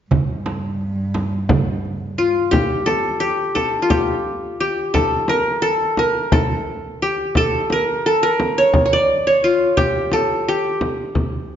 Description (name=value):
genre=Turkish makam ensemble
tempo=174 BPM (eighths)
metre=7/8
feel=straight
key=G makam nikriz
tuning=A4 = 441 Hz
part: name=dark cello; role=drone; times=0.1-2.6 s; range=G2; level=-26 LUFS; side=right 2 dB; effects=none
part: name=darbuka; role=percussion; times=0.1-2.3 s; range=none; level=-23 LUFS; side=right 6 dB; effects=none
part: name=frame drum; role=percussion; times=0.1-11.3 s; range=none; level=-21 LUFS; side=equal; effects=none
part: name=qanun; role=melody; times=2.2-11.6 s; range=F4 to D5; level=-17 LUFS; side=equal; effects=none
room=wet recital hall reverb, RT60 1.7 s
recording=nothing above 7.5 kHz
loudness=-16 LUFS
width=side -9 dB against mid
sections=0.1-2.5 A section; 2.5-11.6 B section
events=none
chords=none